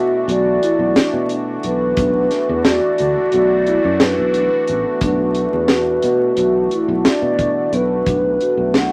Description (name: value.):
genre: progressive instrumental, band music in an uneven meter.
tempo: 177 BPM (eighths).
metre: 9/8.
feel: straight.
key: B minor.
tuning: A4 = 440 Hz.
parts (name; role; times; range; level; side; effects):
mellow hollow wooden flute; melody; 0.0-8.9 s; B4 to F#5; -21 LUFS; equal; none.
sweeping resonant pad; accompaniment; 0.0-8.9 s; E3 to F#4; -28 LUFS; equal; chorus.
marimba with soft mallets; arpeggios; 0.0-8.9 s; B3 to F#4; -22 LUFS; equal; none.
sustaining fretless electric bass; bass; 0.0-8.9 s; A1 to B2; -25 LUFS; equal; none.
deep reggae drum kit; drums; 0.3-8.9 s; hi-hat, kick drum, snare drum; -20 LUFS; equal; none.
egg shaker; percussion; 1.0-8.4 s; none; -48 LUFS; equal; none.
room: moderate club reverb, RT60 0.5 s.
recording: vinyl crackle.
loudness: -17 LUFS.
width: mono.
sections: 0.0-8.1 A section.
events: none.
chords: 0.0 Bm7.